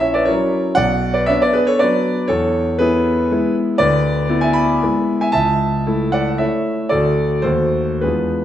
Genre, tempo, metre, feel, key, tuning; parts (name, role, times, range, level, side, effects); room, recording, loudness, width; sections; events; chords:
classical, romantic triple-time dance for piano with dotted rhythms; 99-129 BPM; 3/4; rubato; A4 = 441 Hz
warm concert grand piano; solo; 0.0-8.4 s; A#1 to B5; -15 LUFS; equal
wet recital hall reverb, RT60 1.4 s; -15 LUFS; side -11 dB against mid
0.0-8.4 A section
0.0 F#7/A#; 0.8 Bm; 2.3 E; 3.8 E7/D; 5.3 A/C#; 6.9 D; 7.5 D#dim7